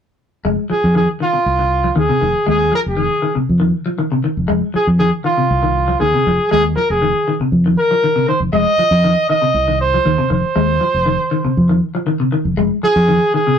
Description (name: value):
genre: afrobeat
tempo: 119 BPM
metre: 4/4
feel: straight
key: F minor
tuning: A4 = 441 Hz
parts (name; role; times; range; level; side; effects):
- semi-hollow electric guitar; arpeggios; 0.4-13.6 s; C3 to Ab3; -19 LUFS; left 3 dB; none
- fingered electric bass; bass; 0.5-13.2 s; F1 to F2; -17 LUFS; equal; none
- clear trumpet; melody; 0.7-13.6 s; F4 to Eb5; -15 LUFS; right 1 dB; none
room: light reverb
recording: rough rehearsal-room recording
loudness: -13 LUFS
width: side -8 dB against mid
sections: 0.4-13.6 A section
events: none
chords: 0.4 Fm7